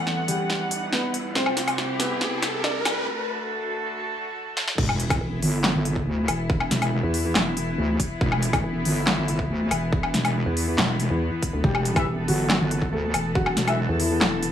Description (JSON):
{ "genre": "heavy wobble dubstep", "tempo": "140 BPM", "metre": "4/4", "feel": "half-time", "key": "E minor", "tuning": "A4 = 442 Hz", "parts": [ { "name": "felt-muted upright piano", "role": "melody", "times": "0.0-2.9, 11.6-14.5 s", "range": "E3 to D5", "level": "-28 LUFS", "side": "left 1 dB", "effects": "vintage 12-bit sampler grit, low-pass filter, dub echo" }, { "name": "rich studio string section", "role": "sustained chords", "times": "0.0-14.5 s", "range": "C2 to F#5", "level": "-30 LUFS", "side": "equal", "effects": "sidechain pumping" }, { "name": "riser and sub drop", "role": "sound effects", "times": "0.0-6.5 s", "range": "none", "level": "-31 LUFS", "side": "equal", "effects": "none" }, { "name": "big-room dance drum kit", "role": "drums", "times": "0.1-14.5 s", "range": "crash cymbal, handclaps, hi-hat, snare drum, woodblock", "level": "-25 LUFS", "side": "left 1 dB", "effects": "overdrive, high-pass filter on perc, studio reverb, high-pass filter on snare, high-pass filter on hats, high-pass filter on cymbals" }, { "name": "wobble bass", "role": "bass", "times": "4.8-13.9 s", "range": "E1 to D2", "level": "-24 LUFS", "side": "equal", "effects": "chorus, overdrive" }, { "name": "electronic kick drum", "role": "drums", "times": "4.8-13.4 s", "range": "none", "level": "-27 LUFS", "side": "equal", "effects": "overdrive, studio reverb" }, { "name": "vowel-sweep wobble bass", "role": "bass", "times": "5.2-14.5 s", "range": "E1 to E2", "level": "-26 LUFS", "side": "equal", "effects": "chorus, overdrive" }, { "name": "warm brass ensemble", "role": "stabs", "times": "12.0-13.8 s", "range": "E4 to E5", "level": "-31 LUFS", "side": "left 1 dB", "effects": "dub echo" } ], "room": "light reverb", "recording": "high-pass filter, studio ambience", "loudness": "-21 LUFS", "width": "side -10 dB against mid", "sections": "0.0-4.8 A section; 4.8-14.5 B section", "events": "build-up 0.0-4.8; drum fill 0.0-3.1, 4.6; riser 0.0-3.1; filter sweep on felt piano 0.0-4.8; break 3.1-4.8; drop 4.8-14.5; impact 4.8-6.5", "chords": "0.0 Emadd9; 1.4 C; 3.1 D; 4.8 Em" }